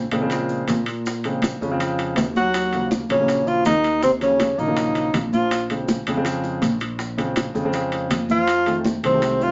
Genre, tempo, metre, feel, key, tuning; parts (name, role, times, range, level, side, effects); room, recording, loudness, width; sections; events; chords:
Afro-Cuban jazz; 162 BPM; 4/4; straight; Bb minor; A4 = 440 Hz
modern bright fingered electric bass; bass; 0.0-9.5 s; Bb1 to Bb2; -31 LUFS; equal
dark grand piano; accompaniment; 0.1-9.5 s; Db3 to Db4; -27 LUFS; equal
congas; percussion; 0.1-9.5 s; -29 LUFS; equal
maracas; percussion; 0.1-9.5 s; -43 LUFS; equal
timbales; percussion; 0.1-9.4 s; -33 LUFS; equal
bongos; percussion; 0.3-9.5 s; -31 LUFS; equal
mellow tenor saxophone; melody; 2.4-5.7, 8.3-9.5 s; C4 to Gb4; -22 LUFS; equal
breathy trombone; second line; 2.4-5.7, 8.3-9.5 s; C3 to Gb3; -31 LUFS; equal
wet club reverb, RT60 0.5 s; nothing above 7.6 kHz; -21 LUFS; mono
0.0-9.5 A section
0.0 Bbm9; 2.5 Ebm9; 5.5 Bbm9; 8.5 F7#9